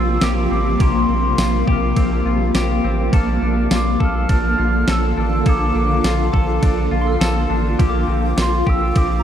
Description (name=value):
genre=dream pop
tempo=103 BPM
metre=4/4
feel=straight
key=Bb lydian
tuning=A4 = 440 Hz
part: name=hollow clarinet-like synth lead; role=melody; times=0.0-9.2 s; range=C6 to F6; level=-24 LUFS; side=equal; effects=chorus, diffuse ambient delay
part: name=shimmering ambient pad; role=sustained chords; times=0.0-9.2 s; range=C3 to A4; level=-21 LUFS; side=equal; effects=chorus, built-in reverb
part: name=semi-hollow electric guitar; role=arpeggios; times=0.0-9.2 s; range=Bb3 to A4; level=-25 LUFS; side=left 4 dB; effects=wide subtle chorus, diffuse ambient delay
part: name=saturated sub bass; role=bass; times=0.0-9.2 s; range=A1 to Bb1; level=-20 LUFS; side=equal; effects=none
part: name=soft synth bell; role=texture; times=0.0-9.2 s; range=Bb5 to F6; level=-36 LUFS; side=right 3 dB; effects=none
part: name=clean 12-bit digital drum machine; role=drums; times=0.2-9.1 s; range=kick drum, ride cymbal, snare drum, tambourine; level=-19 LUFS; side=equal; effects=none
room=moderate lush hall reverb, RT60 1.8 s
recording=dreamy mix soaked in reverb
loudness=-15 LUFS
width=side -9 dB against mid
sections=0.0-9.2 A section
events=none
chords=0.0 C7sus4; 3.1 Bbmaj7; 7.8 C7sus4